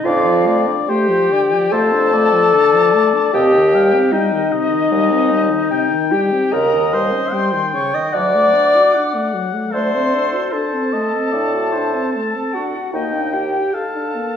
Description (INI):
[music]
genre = classical, slow romantic movement for wind quintet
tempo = 75 BPM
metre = 4/4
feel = rubato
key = unclear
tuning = A4 = 441 Hz
[part]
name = bright silver concert flute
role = melody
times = 0.0-14.4 s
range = Eb5 to Eb6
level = -23 LUFS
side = left 7 dB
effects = none
[part]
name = dark French horn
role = accompaniment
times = 0.0-14.4 s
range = C3 to G4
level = -23 LUFS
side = left 2 dB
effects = none
[part]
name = mellow clarinet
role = accompaniment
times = 0.0-14.4 s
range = Eb4 to Eb5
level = -16 LUFS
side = left 1 dB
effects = none
[part]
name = warm oboe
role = second line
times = 0.1-14.4 s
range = A4 to A5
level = -22 LUFS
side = left 3 dB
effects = none
[part]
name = warm bassoon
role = bass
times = 0.1-13.6 s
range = D2 to A2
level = -22 LUFS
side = equal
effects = none
[sound]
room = wet scoring stage reverb, RT60 1.4 s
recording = worn, warbling old tape, cassette tape, warbly pitch drift, small room reverb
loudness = -14 LUFS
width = side -8 dB against mid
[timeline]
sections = 0.0-14.4 A section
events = none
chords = 0.0 Dm/F; 3.3 Cm/Eb; 6.5 Eb7; 8.1 D; 9.7 D7; 12.9 Ebmaj7